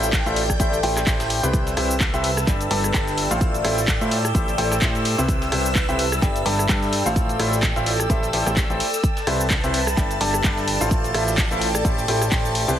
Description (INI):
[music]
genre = piano house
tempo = 128 BPM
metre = 4/4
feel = swing 57% on 16ths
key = unclear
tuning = A4 = 444 Hz
[part]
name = string machine, violins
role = sustained chords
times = 0.0-12.8 s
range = G5 to E6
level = -30 LUFS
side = equal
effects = ensemble chorus, sidechain pumping
[part]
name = clear baby grand piano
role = riff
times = 0.0-12.8 s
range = C3 to A5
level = -24 LUFS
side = equal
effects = sidechain pumping
[part]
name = fat analog bass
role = bass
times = 0.0-12.8 s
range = G1 to A2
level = -26 LUFS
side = equal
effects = sidechain pumping
[part]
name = breakbeat sampler-style drum kit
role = drums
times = 0.0-12.7 s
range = hi-hat, snare drum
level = -36 LUFS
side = equal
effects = none
[part]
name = punchy analog drum machine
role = drums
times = 0.0-12.8 s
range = handclaps, hi-hat, rim click, shaker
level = -25 LUFS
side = equal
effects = none
[part]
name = airy breathy pad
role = texture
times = 0.0-12.8 s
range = A4 to A5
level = -28 LUFS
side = equal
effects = chorus, phaser, sidechain pumping
[part]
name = electronic kick drum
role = drums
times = 0.1-12.4 s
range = none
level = -22 LUFS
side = equal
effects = none
[sound]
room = light reverb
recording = heavily compressed radio sound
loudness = -18 LUFS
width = side -10 dB against mid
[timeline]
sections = 0.0-12.8 A section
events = none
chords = 0.0 Fmaj7/A; 0.6 Am7; 1.5 Cmaj7; 2.5 Gsus2; 3.4 Fmaj7/A; 4.3 Am7; 5.3 Cmaj7; 6.2 Gsus2; 7.2 Fmaj7/A; 8.1 Am7; 9.0 Cmaj7; 10.0 Gsus2; 10.9 Fmaj7/A; 11.8 Am7